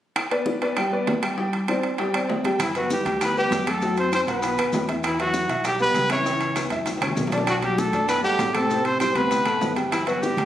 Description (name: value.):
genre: Afro-Cuban jazz.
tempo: 197 BPM.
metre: 4/4.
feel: straight.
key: G major.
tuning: A4 = 436 Hz.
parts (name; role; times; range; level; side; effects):
bongos; percussion; 0.2-10.4 s; none; -32 LUFS; left 3 dB; none.
claves; percussion; 0.2-10.1 s; none; -36 LUFS; left 1 dB; none.
congas; percussion; 0.2-10.5 s; none; -34 LUFS; left 2 dB; none.
timbales; percussion; 0.2-10.5 s; none; -29 LUFS; right 5 dB; none.
clear upright piano; accompaniment; 0.3-10.5 s; C3 to G5; -26 LUFS; left 1 dB; none.
warm trumpet; melody; 2.6-10.5 s; E4 to C#5; -24 LUFS; equal; none.
mellow trombone; second line; 2.6-10.5 s; E3 to C#4; -30 LUFS; right 2 dB; none.
upright bass; bass; 2.6-10.5 s; G1 to F#2; -32 LUFS; equal; none.
maracas; percussion; 2.6-10.5 s; none; -39 LUFS; left 2 dB; none.
room: moderate club reverb, RT60 0.8 s.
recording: recorded on a phone in the room, studio reverb, compression.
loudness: -20 LUFS.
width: side -11 dB against mid.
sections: 0.2-2.6 A section; 2.6-10.5 B section.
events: drum fill 6.9-7.5.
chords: 0.2 G; 1.4 D7sus4; 2.6 G; 3.8 Am69; 4.4 B; 5.0 Emadd9; 6.3 C#m7; 6.9 F#5; 7.5 Bm7; 8.7 Am9; 9.3 D5; 9.9 G.